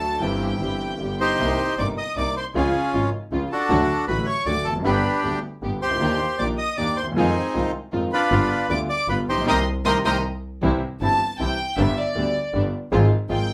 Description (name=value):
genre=tango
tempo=156 BPM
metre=3/4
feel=rubato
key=C minor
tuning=A4 = 440 Hz
part: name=warm studio violin section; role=second line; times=0.0-13.5 s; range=D5 to Eb6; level=-30 LUFS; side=equal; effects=none
part: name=clear concert grand piano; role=accompaniment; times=0.0-13.5 s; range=G1 to A4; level=-28 LUFS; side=equal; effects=none
part: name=rich symphonic string section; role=stabs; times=0.0-13.5 s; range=G3 to A4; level=-34 LUFS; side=equal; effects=none
part: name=clear double bass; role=bass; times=0.0-13.5 s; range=F1 to F2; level=-29 LUFS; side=equal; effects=none
part: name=bandoneon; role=melody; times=1.2-10.2 s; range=C4 to Eb5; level=-26 LUFS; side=equal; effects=none
room=wet studio ambience, RT60 0.5 s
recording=band playing live in one room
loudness=-22 LUFS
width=mono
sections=0.0-1.4 A section; 1.4-10.6 B section; 10.6-13.5 A section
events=violin section solo 0.0-1.4, 10.6-13.5; band accent 9.5-10.6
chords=0.2 C/G; 1.0 G; 1.4 Cm7; 2.6 Db; 3.7 D; 4.9 G; 6.0 Ebmaj7; 7.2 Fm7; 8.3 G7; 9.5 Cm7; 10.6 C; 11.8 G; 12.9 Fm/Ab